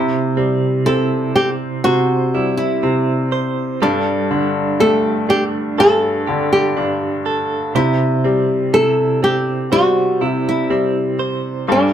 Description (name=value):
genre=pop ballad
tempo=61 BPM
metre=4/4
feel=straight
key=unclear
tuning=A4 = 440 Hz
part: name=flamenco guitar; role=melody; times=0.0-11.9 s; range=D4 to A4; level=-17 LUFS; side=right 1 dB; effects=none
part: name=bright upright piano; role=accompaniment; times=0.0-11.9 s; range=G2 to C4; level=-18 LUFS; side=left 2 dB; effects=none
part: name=direct-recorded clean electric guitar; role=arpeggios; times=0.0-11.9 s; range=C3 to C5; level=-22 LUFS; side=right 4 dB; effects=tremolo
room=moderate small room reverb, RT60 0.5 s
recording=band playing live in one room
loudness=-14 LUFS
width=side -9 dB against mid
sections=0.0-11.9 A section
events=none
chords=0.0 C; 3.8 Gsus2; 7.7 C